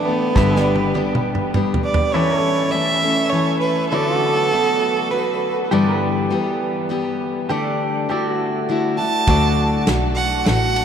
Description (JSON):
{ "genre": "honky-tonk and classic country", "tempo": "101 BPM", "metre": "3/4", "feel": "straight", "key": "G major", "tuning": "A4 = 441 Hz", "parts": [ { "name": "clear fiddle", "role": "second line", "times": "0.0-5.6, 9.0-10.8 s", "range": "B3 to A5", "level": "-21 LUFS", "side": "right 4 dB", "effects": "none" }, { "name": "picked steel-string acoustic guitar", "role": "accompaniment", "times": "0.0-10.8 s", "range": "G2 to A4", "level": "-21 LUFS", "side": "left 3 dB", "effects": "none" }, { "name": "pedal steel guitar", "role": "sustained chords", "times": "0.0-10.8 s", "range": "E4 to E5", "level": "-24 LUFS", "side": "right 2 dB", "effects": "wide subtle chorus" }, { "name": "clear double bass", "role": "bass", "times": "0.4-1.7, 9.3-10.8 s", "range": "G1 to D2", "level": "-22 LUFS", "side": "equal", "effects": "none" }, { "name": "natural country drum kit", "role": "drums", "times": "0.4-2.1, 9.3-10.8 s", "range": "kick drum, ride cymbal, snare drum, toms", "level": "-22 LUFS", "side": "right 1 dB", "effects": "none" } ], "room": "wet huge ambient reverb, RT60 7.3 s", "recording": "in a vast, echoing space", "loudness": "-16 LUFS", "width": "side -8 dB against mid", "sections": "0.0-2.1 A section; 2.1-10.8 B section", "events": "drum fill 0.4-2.1; fiddle solo 2.1-10.8", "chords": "0.4 G; 2.1 A; 3.9 D6; 5.7 G6; 7.5 Dsus4; 8.1 Dadd9; 9.3 D", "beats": "| 0.36 0.96 1.55 | 2.14 2.74 3.33 | 3.92 4.52 5.11 | 5.71 6.30 6.90 | 7.49 8.09 8.68 | 9.28 9.87 10.47" }